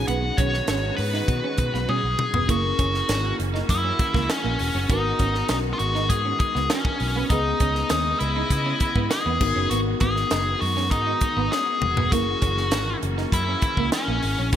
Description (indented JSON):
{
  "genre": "polished 1980s jazz-funk pop",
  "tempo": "100 BPM",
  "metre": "4/4",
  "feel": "straight",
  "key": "unclear",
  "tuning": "A4 = 440 Hz",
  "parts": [
    { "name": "nasal lead guitar with a parked wah", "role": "melody", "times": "0.0-14.6 s", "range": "C#4 to F#5", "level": "-25 LUFS", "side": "left 1 dB", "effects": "overdrive" },
    { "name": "mellow tine electric piano", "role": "accompaniment", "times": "0.0-14.6 s", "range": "B3 to D#5", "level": "-31 LUFS", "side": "left 4 dB", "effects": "slow stereo tremolo, wide subtle chorus" },
    { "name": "clear studio string section", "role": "sustained chords", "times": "0.0-14.6 s", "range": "C#3 to D#5", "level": "-34 LUFS", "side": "equal", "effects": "none" },
    { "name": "clean electric guitar", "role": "riff", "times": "0.0-14.6 s", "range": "A#3 to D#4", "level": "-32 LUFS", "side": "right 6 dB", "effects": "lush chorus" },
    { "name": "vintage muted fingered electric bass", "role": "bass", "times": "0.0-14.6 s", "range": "E1 to C#3", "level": "-26 LUFS", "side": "equal", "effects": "none" },
    { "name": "tight funk drum kit", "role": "drums", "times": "0.1-14.6 s", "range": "crash cymbal, hi-hat, kick drum, snare drum, toms", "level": "-26 LUFS", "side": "equal", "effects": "gated reverb" }
  ],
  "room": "light reverb, small room ambience",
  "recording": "bright 1980s-style digital production",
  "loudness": "-20 LUFS",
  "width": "side -10 dB against mid",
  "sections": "0.0-2.5 A section; 2.5-14.6 A section",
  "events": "drum fill 1.9-2.5, 11.5-12.1",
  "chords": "0.0 B6; 2.5 F#7; 4.9 G#m7; 7.3 C#m9; 9.4 G#m7; 12.1 F#7",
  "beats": "| 0.08 0.68 1.28 1.88 | 2.49 3.09 3.69 4.29 | 4.89 5.50 6.10 6.70 | 7.30 7.90 8.51 9.11 | 9.71 10.31 10.91 11.52 | 12.12 12.72 13.32 13.93 | 14.53"
}